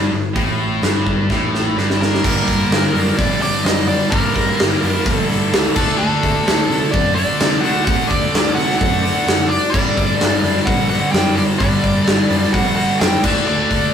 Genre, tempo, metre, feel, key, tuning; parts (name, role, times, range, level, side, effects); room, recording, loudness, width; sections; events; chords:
hard rock; 128 BPM; 4/4; straight; G harmonic minor; A4 = 440 Hz
scooped high-gain guitar; riff; 0.0-13.9 s; G2 to D4; -21 LUFS; left 5 dB; distortion
scooped high-gain guitar; riff; 0.0-13.9 s; G2 to D4; -22 LUFS; right 4 dB; distortion
fingered electric bass; bass; 0.0-13.9 s; F#1 to C3; -24 LUFS; equal
big rock drum kit; drums; 0.4-13.8 s; crash cymbal, hi-hat, kick drum, snare drum; -18 LUFS; equal
nasal lead guitar with a parked wah; melody; 2.0-13.9 s; A4 to G5; -22 LUFS; left 1 dB; overdrive
octave-fuzz lead guitar; second line; 2.0-13.9 s; A3 to G4; -26 LUFS; right 1 dB; distortion
moderate stone room reverb, RT60 0.9 s; rough rehearsal-room recording, warm saturation; -14 LUFS; side -8 dB against mid
0.0-2.2 A section; 2.2-13.9 B section
drum fill 1.3-2.2
0.0 N.C.; 2.2 Gm; 5.8 D; 9.7 Gm; 13.2 D5